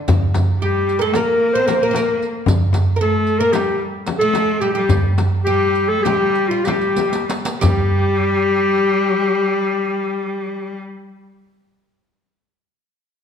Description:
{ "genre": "Turkish makam ensemble", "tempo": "181-226 BPM (eighths)", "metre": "9/8", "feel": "straight", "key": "G makam huseyni", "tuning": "A4 = 440 Hz", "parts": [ { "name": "darbuka", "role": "percussion", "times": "0.1-7.9 s", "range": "none", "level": "-19 LUFS", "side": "right 1 dB", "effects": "none" }, { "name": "frame drum", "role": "percussion", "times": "0.1-7.9 s", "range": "none", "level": "-24 LUFS", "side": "left 4 dB", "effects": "none" }, { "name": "riq", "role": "percussion", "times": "0.1-7.9 s", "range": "none", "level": "-31 LUFS", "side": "right 3 dB", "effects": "none" }, { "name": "warm clarinet", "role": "melody", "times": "0.6-10.8 s", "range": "F4 to C5", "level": "-18 LUFS", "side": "left 2 dB", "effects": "none" }, { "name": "clear cello", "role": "second line", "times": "0.6-10.8 s", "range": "G3 to C4", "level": "-23 LUFS", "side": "left 3 dB", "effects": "slapback echo" }, { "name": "oud", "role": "second line", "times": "0.6-10.8 s", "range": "F4 to C5", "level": "-25 LUFS", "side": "right 6 dB", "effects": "none" } ], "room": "wet recital hall reverb, RT60 1.5 s", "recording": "dark, warm production", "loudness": "-15 LUFS", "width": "side -7 dB against mid", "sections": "0.0-7.6 A section; 7.6-10.6 B section", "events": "slowing down 3.0-7.6; drum fill 7.0-7.6", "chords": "none", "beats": "| 0.08 0.34 0.61 0.87 1.14 1.41 1.67 1.94 2.20 | 2.47 2.73 3.00 3.26 3.53 3.80 4.07 4.34 4.62 | 4.90 5.18 5.47 5.76 6.05 6.35 6.66 6.97 7.29 | 7.62 7.95 8.29 8.62 8.95 9.28 9.61 9.95 10.28" }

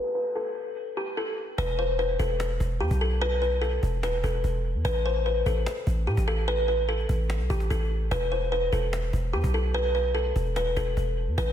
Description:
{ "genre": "hip hop, trap", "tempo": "147 BPM", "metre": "4/4", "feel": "half-time", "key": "E minor", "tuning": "A4 = 440 Hz", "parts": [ { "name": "kalimba", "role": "melody", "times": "0.0-11.5 s", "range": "G4 to C5", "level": "-28 LUFS", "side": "left 1 dB", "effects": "low-pass filter, diffuse ambient delay" }, { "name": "warm 808-style bass", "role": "bass", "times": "1.6-11.5 s", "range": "D#1 to A2", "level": "-27 LUFS", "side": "equal", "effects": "none" }, { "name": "cajon", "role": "drums", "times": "1.6-11.5 s", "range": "none", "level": "-36 LUFS", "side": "equal", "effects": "none" } ], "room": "moderate lush hall reverb, RT60 1.8 s, studio reverb", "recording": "dreamy mix soaked in reverb, low-pass filter", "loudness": "-24 LUFS", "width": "side -10 dB against mid", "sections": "0.0-1.6 A section; 1.6-11.5 B section", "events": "break 0.0-1.6; filter sweep 0.0-1.6", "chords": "0.0 N.C.; 1.6 E5; 4.8 Asus2; 8.1 E5", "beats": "0.36 0.77 1.17 | 1.58 1.99 2.40 2.81 | 3.21 3.62 4.03 4.44 | 4.85 5.25 5.66 6.07 | 6.48 6.89 7.30 7.70 | 8.11 8.52 8.93 9.34 | 9.74 10.15 10.56 10.97 | 11.38" }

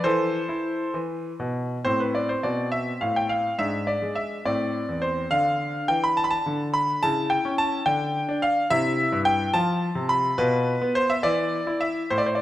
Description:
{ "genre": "classical, baroque-style suite movement for grand piano", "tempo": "70 BPM (dotted quarters)", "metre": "6/8", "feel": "rubato", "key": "A minor", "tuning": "A4 = 440 Hz", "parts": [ { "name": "bright concert grand piano", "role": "solo", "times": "0.0-12.4 s", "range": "E2 to B5", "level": "-22 LUFS", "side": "equal", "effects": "none" } ], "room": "moderate recital hall reverb, RT60 1.7 s", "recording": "none", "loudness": "-22 LUFS", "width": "side -14 dB against mid", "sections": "0.0-1.9 A section; 1.9-12.4 A section", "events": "none", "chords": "0.0 Am/E; 0.9 E5; 1.9 Am; 3.6 E7/G#; 4.5 Am; 5.3 Dm; 7.0 A7/C#; 7.9 N.C.; 8.7 C; 9.5 F; 10.4 Bsus4; 11.2 N.C.", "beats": "| 0.03 0.95 | 1.85 2.73 | 3.60 4.46 | 5.32 6.17 | 7.02 7.86 | 8.71 9.55 | 10.39 11.25 | 12.11" }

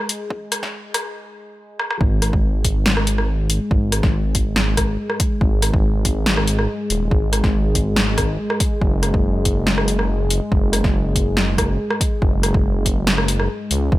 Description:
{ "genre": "deep dubstep", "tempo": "141 BPM", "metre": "4/4", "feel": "half-time", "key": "unclear", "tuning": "A4 = 440 Hz", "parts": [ { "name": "dark analog pad", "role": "sustained chords", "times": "0.0-14.0 s", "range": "G#3", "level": "-26 LUFS", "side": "left 1 dB", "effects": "chorus" }, { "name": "deep house drum kit", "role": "drums", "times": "0.1-13.8 s", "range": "hi-hat, rim click, snare drum", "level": "-21 LUFS", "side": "equal", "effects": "overdrive, high-pass filter on snare, high-pass filter on hats, high-pass filter on room" }, { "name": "electronic kick drum", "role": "drums", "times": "0.3-14.0 s", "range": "none", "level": "-19 LUFS", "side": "equal", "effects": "overdrive" }, { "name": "dark detuned saw bass", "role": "bass", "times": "2.0-14.0 s", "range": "D#1 to C#2", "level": "-20 LUFS", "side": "equal", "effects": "none" } ], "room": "little or no reverb", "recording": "high-pass filter", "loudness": "-16 LUFS", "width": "side -16 dB against mid", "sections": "0.0-2.0 A section; 2.0-14.0 B section", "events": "build-up 0.0-2.0; filter sweep 0.0-2.0; break 1.2-2.0; drum fill 1.8; drop 2.0-14.0", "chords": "0.0 N.C.; 2.0 G#5; 8.8 N.C.", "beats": "| 0.30 0.73 1.16 1.58 | 2.01 2.43 2.86 3.28 | 3.71 4.13 4.56 4.99 | 5.41 5.84 6.26 6.69 | 7.11 7.54 7.96 8.39 | 8.82 9.24 9.67 10.09 | 10.52 10.94 11.37 11.79 | 12.22 12.65 13.07 13.50 | 13.92" }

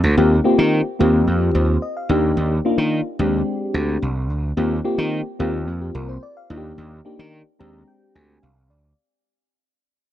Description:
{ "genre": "early-eighties boogie funk", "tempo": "109 BPM", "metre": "4/4", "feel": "straight", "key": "Eb major", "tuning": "A4 = 437 Hz", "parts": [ { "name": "gritty slap bass", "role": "bass", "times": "0.0-8.9 s", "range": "C2 to Eb3", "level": "-20 LUFS", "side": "right 1 dB", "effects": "overdrive" }, { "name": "mellow FM electric piano", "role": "accompaniment", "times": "0.2-9.0 s", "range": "Ab3 to Bb5", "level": "-20 LUFS", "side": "left 1 dB", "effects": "chorus" } ], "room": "light reverb", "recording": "none", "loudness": "-17 LUFS", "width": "side -12 dB against mid", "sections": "0.2-9.0 A section", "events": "fade-out 0.2-9.0; FM electric piano fill 7.3-9.0", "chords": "0.2 Eb69; 2.1 Ebmaj9; 3.2 Abmaj7#11; 4.6 Eb69; 6.5 Ebmaj7; 7.6 Bb13", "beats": "| 0.17 0.72 1.27 1.82 | 2.37 2.92 3.47 4.02 | 4.57 5.12 5.67 6.22 | 6.77 7.32 7.88 8.43" }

